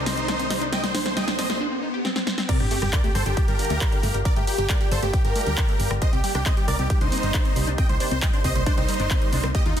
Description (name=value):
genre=uplifting trance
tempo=136 BPM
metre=4/4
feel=straight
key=C dorian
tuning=A4 = 440 Hz
part: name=big supersaw lead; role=melody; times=0.0-9.8 s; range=Eb4 to G5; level=-28 LUFS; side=right 1 dB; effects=sidechain pumping, ping-pong delay
part: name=lush unison pad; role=sustained chords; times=0.0-9.8 s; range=C2 to A5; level=-33 LUFS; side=equal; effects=chorus, phaser, sidechain pumping
part: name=riser and sub drop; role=sound effects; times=0.0-4.3 s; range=none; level=-32 LUFS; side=left 1 dB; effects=none
part: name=tight sequenced synth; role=arpeggios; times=0.1-9.8 s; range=D3 to C5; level=-32 LUFS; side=left 2 dB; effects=chorus, phaser, sidechain pumping, ping-pong delay
part: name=punchy analog drum machine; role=drums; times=0.1-9.8 s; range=crash cymbal, handclaps, hi-hat, rim click, snare drum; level=-29 LUFS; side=equal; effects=overdrive
part: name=supersaw stab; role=second line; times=2.5-9.8 s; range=Eb4 to G5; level=-32 LUFS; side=right 1 dB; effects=phaser, sidechain pumping
part: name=electronic kick drum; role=drums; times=2.5-9.6 s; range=none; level=-22 LUFS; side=equal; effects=none
part: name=solid FM bass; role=bass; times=2.6-9.7 s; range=G1 to Eb2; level=-26 LUFS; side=equal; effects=sidechain pumping
room=light reverb, digital ambience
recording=dense, heavily limited modern master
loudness=-20 LUFS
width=side -9 dB against mid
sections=0.0-2.5 A section; 2.5-9.8 B section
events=build-up 0.0-2.5; drum fill 0.0-1.6, 2.0-2.5; riser 0.0-2.5; filter sweep on synth arpeggio sound 0.0-2.5; drop 2.5-9.8; impact 2.5-4.3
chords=0.0 Cm7; 2.5 Gm7; 6.0 Cm7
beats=0.28 | 0.72 1.17 1.61 2.05 | 2.49 2.93 3.37 3.81 | 4.25 4.70 5.14 5.58 | 6.02 6.46 6.90 7.34 | 7.78 8.22 8.67 9.11 | 9.55